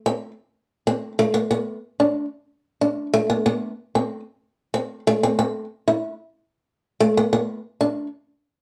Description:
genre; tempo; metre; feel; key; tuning
highlife; 124 BPM (dotted quarters); 12/8; straight; unclear; A4 = 435 Hz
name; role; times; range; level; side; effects
picked old ladder-braced acoustic guitar; solo; 0.1-8.1 s; A3 to E4; -22 LUFS; equal; none
room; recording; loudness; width
moderate studio reverb, RT60 0.6 s; home recording on cassette; -23 LUFS; mono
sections
0.0-5.1 A section; 5.1-8.6 B section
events
none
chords
none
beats
0.23 0.71 | 1.20 1.68 2.17 2.65 | 3.13 3.62 4.11 4.59 | 5.08 5.56 6.05 6.53 | 7.02 7.50 7.99

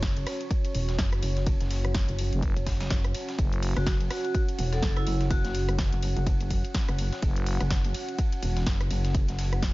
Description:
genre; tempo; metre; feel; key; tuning
bass house; 125 BPM; 4/4; swing 58% on 16ths; unclear; A4 = 438 Hz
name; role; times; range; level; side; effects
dark analog pad; sustained chords; 0.0-9.7 s; C#4 to F#5; -36 LUFS; right 1 dB; chorus, sidechain pumping
pulsing pluck wobble bass; bass; 0.0-9.7 s; E1 to F#1; -28 LUFS; equal; chorus, overdrive, sidechain pumping
dusty soul sampler-style drum kit; drums; 0.0-9.7 s; ride cymbal, snare drum; -44 LUFS; right 1 dB; overdrive, sidechain pumping on cymbals, high-pass filter on cymbals, high-pass filter on snare
electronic kick drum; drums; 0.0-9.7 s; none; -27 LUFS; equal; none
house drum kit; drums; 0.0-9.7 s; hi-hat, ride cymbal, rim click, snare drum; -36 LUFS; equal; none
growling FM bass; bass; 2.3-3.7, 7.2-7.6 s; F#1; -28 LUFS; equal; tube saturation, sidechain pumping
vibraphone with medium hard mallets; melody; 3.8-5.7 s; E4 to A4; -33 LUFS; right 1 dB; tape echo
room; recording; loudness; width
digital ambience; nothing above 7.5 kHz; -25 LUFS; side -20 dB against mid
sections
0.0-9.7 A section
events
none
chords
0.0 F#5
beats
0.03 0.51 0.98 | 1.47 1.95 2.42 2.90 | 3.38 3.87 4.34 4.83 | 5.30 5.79 6.26 6.75 | 7.22 7.71 8.19 8.66 | 9.14 9.62

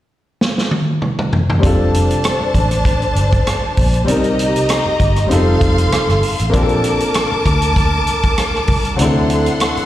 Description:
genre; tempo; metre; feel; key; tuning
lush 1970s-style soul; 98 BPM; 4/4; swing 54% on 16ths; F major; A4 = 439 Hz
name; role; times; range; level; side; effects
vintage drum kit; drums; 0.4-9.9 s; hi-hat, kick drum, rim click, snare drum, toms; -18 LUFS; equal; none
warm symphonic string section; second line; 1.6-9.9 s; D4 to D6; -19 LUFS; equal; slapback echo
warm baby grand piano; accompaniment; 1.6-9.9 s; F#3 to D5; -19 LUFS; left 2 dB; slapback echo
vintage muted fingered electric bass; bass; 1.6-9.8 s; F1 to D2; -17 LUFS; equal; none
room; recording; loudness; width
light reverb; live gig heard through the venue's PA, recital hall reverb; -13 LUFS; side -13 dB against mid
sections
0.0-1.6 A section; 1.6-9.9 B section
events
drum fill 0.4-1.6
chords
0.0 N.C.; 1.6 F69; 4.1 Cm7; 5.3 F7; 6.5 Bbmaj7; 9.0 D7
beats
0.41 1.02 | 1.63 2.25 2.86 3.47 | 4.08 4.70 5.31 5.92 | 6.54 7.15 7.76 8.38 | 8.99 9.60

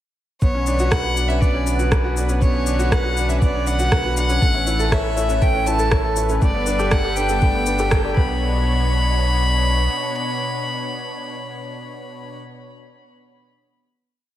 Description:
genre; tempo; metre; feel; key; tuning
piano and strings electronica; 120 BPM; 4/4; straight; B minor; A4 = 440 Hz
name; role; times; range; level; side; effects
rich violin; melody; 0.4-12.4 s; C#5 to B5; -24 LUFS; left 1 dB; tape echo
lush unison pad; sustained chords; 0.4-12.4 s; B2 to C#5; -28 LUFS; equal; chorus, sidechain pumping
bright grand piano; riff; 0.4-14.4 s; A3 to C#5; -25 LUFS; equal; tape echo
warm sub bass; bass; 0.4-9.9 s; G1 to B1; -22 LUFS; equal; tube saturation, sidechain pumping
electronic kick drum; drums; 0.4-8.3 s; none; -18 LUFS; equal; none
electronic shaker and rim click; drums; 0.4-8.0 s; none; -26 LUFS; equal; overdrive
soft round pluck; arpeggios; 4.4-8.6 s; A4 to A5; -31 LUFS; left 2 dB; chorus, sidechain pumping, tape echo
room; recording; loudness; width
moderate plate reverb, RT60 1.8 s, digital ambience; dreamy mix soaked in reverb; -17 LUFS; side -12 dB against mid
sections
0.4-8.4 drop; 8.4-12.4 final hit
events
drop 0.4-8.4; band accent 7.9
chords
0.4 Bmadd9; 4.4 A; 6.4 Gadd9; 8.2 Bmadd9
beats
| 0.42 0.92 1.42 1.92 | 2.42 2.92 3.42 3.92 | 4.42 4.92 5.42 5.92 | 6.42 6.92 7.42 7.92 | 8.42 8.92 9.42 9.92 | 10.42 10.92 11.42 11.92

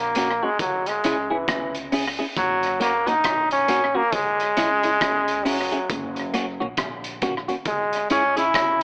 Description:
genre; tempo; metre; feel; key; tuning
roots reggae; 68 BPM; 4/4; swing 60% on 16ths; F# mixolydian; A4 = 441 Hz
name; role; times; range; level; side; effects
brilliant trombone; melody; 0.0-8.8 s; E3 to E4; -24 LUFS; equal; dub echo
upright bass; bass; 0.0-8.8 s; F#1 to C#2; -37 LUFS; equal; none
clean electric guitar; accompaniment; 0.2-8.4 s; A#3 to G#4; -29 LUFS; equal; subtle chorus, dub echo
crunchy breakbeat drum kit; drums; 0.2-8.8 s; hi-hat, kick drum, rim click; -30 LUFS; equal; tape echo
room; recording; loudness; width
moderate spring reverb, RT60 2.4 s; AM radio sound; -23 LUFS; mono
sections
0.0-8.8 A section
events
trombone solo 0.0-8.8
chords
0.0 F#; 0.6 C#m; 2.4 F#; 4.1 C#m; 5.9 F#; 7.7 C#m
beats
0.60 1.48 | 2.36 3.25 4.13 5.01 | 5.89 6.78 7.66 8.54

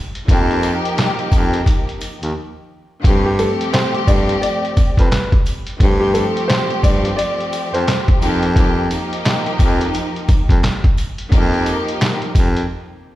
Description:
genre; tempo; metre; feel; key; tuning
hip hop, boom-bap hip-hop; 87 BPM; 4/4; swing 62% on 16ths; unclear; A4 = 439 Hz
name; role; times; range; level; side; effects
trip hop sampler-style drum kit; drums; 0.2-12.7 s; handclaps, hi-hat, kick drum, snare drum; -16 LUFS; equal; none
warm studio string section; accompaniment; 0.3-12.7 s; F3 to G4; -22 LUFS; left 1 dB; high-pass filter, low-pass filter
warm baritone saxophone; bass; 0.3-12.6 s; Eb2 to G2; -20 LUFS; equal; none
sleigh bells; percussion; 0.3-12.5 s; none; -40 LUFS; right 4 dB; none
warm upright piano; melody; 3.3-8.5 s; G4 to D5; -22 LUFS; equal; high-pass filter, low-pass filter
room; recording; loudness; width
light reverb; played on a big sound system in a bare room, stone room reverb; -14 LUFS; side -15 dB against mid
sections
0.0-13.2 A section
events
break 2.4-3.0, 12.7-13.2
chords
0.0 F9sus4; 3.0 G9sus4; 8.2 F9sus4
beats
| 0.28 0.97 1.66 2.35 | 3.04 3.73 4.42 5.11 | 5.80 6.49 7.18 7.87 | 8.56 9.25 9.94 10.63 | 11.32 12.01 12.70

